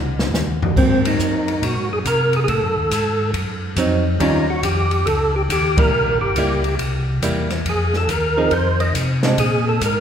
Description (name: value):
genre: soul jazz organ trio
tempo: 139 BPM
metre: 4/4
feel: swing 65% on 8ths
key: unclear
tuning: A4 = 439 Hz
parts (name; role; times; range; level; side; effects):
- mellow tonewheel organ; bass; 0.0-10.0 s; G1 to C3; -21 LUFS; equal; chorus vibrato, slow rotary speaker
- open jazz drum kit; drums; 0.2-9.9 s; crash cymbal, hi-hat, kick drum, ride cymbal, snare drum, toms; -23 LUFS; left 1 dB; none
- percussive tonewheel organ; melody; 0.8-10.0 s; C4 to Eb5; -20 LUFS; equal; slow rotary speaker, overdrive, chorus vibrato
- archtop guitar, miked and amplified; accompaniment; 0.8-9.4 s; Eb3 to Ab4; -24 LUFS; right 2 dB; none
room: wet concert hall reverb, RT60 2.0 s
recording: recorded in a church or concert hall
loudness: -16 LUFS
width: side -8 dB against mid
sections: 0.0-10.0 A section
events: drum fill 0.0-0.8; band accent 5.7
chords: 0.0 Eb7(no3); 0.8 Ab9; 2.5 Adim7; 4.2 Eb9; 5.9 C7; 7.7 Fm7; 9.4 Bb7(no3)